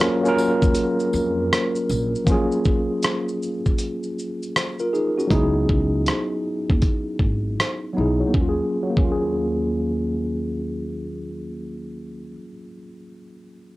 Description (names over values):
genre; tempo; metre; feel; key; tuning
lo-fi hip hop; 79 BPM; 4/4; swing 65% on 16ths; unclear; A4 = 442 Hz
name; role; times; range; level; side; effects
tine electric piano; accompaniment; 0.0-13.8 s; F3 to Bb4; -23 LUFS; equal; medium stereo tremolo, cassette tape, low-pass filter
dusty soul sampler-style drum kit; drums; 0.0-9.1 s; hi-hat, kick drum, rim click, shaker; -21 LUFS; equal; cassette tape
tambourine; percussion; 0.4-2.1 s; none; -39 LUFS; left 3 dB; none
upright bass; bass; 0.6-12.3 s; Ab1 to F2; -26 LUFS; equal; none
room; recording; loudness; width
light reverb; home recording on cassette; -20 LUFS; side -19 dB against mid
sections
0.0-2.3 A section; 2.3-8.3 B section; 8.3-11.4 C section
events
break 0.7-2.3, 2.3-5.3; filter sweep on tine electric piano 2.3-8.3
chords
0.0 Ebm11 (rootless); 2.3 Gbmaj9; 5.3 Dbm11; 8.3 Ebm11